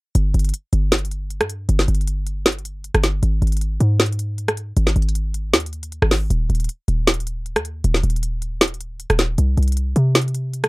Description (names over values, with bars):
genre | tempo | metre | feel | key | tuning
hip hop, trap | 156 BPM | 4/4 | half-time | unclear | A4 = 440 Hz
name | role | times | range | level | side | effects
trap drum kit | drums | 0.1-10.7 s | hi-hat, rim click, snare drum | -19 LUFS | equal | none
short 808-style bass | bass | 0.2-10.7 s | Eb1 to C3 | -19 LUFS | equal | none
room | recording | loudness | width
little or no reverb | dark, warm production | -18 LUFS | side -23 dB against mid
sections
0.2-10.7 A section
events
none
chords
none